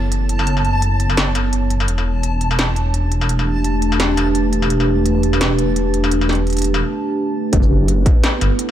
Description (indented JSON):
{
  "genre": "half-time drum and bass",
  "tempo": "170 BPM",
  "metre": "4/4",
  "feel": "swing 56% on 16ths, half-time",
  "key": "unclear",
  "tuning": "A4 = 440 Hz",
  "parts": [
    { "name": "dark analog pad", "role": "sustained chords", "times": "0.0-8.7 s", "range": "A3 to C#5", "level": "-20 LUFS", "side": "right 1 dB", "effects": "chorus, phaser, sidechain pumping" },
    { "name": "dark detuned saw bass", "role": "bass", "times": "0.0-8.5 s", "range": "E1 to G1", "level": "-18 LUFS", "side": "equal", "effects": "none" },
    { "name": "backwards swelling texture", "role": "texture", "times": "0.0-6.8 s", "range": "A5", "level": "-27 LUFS", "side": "left 1 dB", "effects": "built-in reverb" },
    { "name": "industrial drum kit", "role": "drums", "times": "0.1-8.7 s", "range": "hi-hat, shaker, snare drum, struck metal", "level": "-22 LUFS", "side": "left 1 dB", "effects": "none" },
    { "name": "electronic kick drum", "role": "drums", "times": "7.5-8.1 s", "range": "none", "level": "-14 LUFS", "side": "equal", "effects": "distortion" }
  ],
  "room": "light reverb",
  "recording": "dark, warm production",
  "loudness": "-15 LUFS",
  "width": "side -11 dB against mid",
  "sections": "0.0-7.5 A section; 7.5-8.7 B section",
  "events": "break 6.8-7.5; drop 7.5-8.7",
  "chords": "0.0 F#m; 1.9 Em; 7.5 F#m"
}